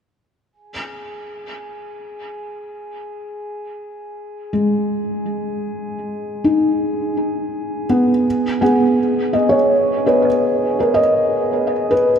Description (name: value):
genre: ambient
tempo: free time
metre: none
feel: none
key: unclear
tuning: A4 = 440 Hz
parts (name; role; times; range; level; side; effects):
- glass harmonica; texture; 0.5-12.2 s; G#4 to G#5; -29 LUFS; left 2 dB; none
- felt-muted upright piano; arpeggios; 4.5-12.2 s; G#3 to G#5; -16 LUFS; equal; tape echo
room: wet cathedral reverb, RT60 6.9 s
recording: none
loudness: -15 LUFS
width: side -8 dB against mid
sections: 0.5-12.2 A section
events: fade-in on glass harmonica 0.5-12.2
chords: 0.5 G#5; 8.3 Bmaj7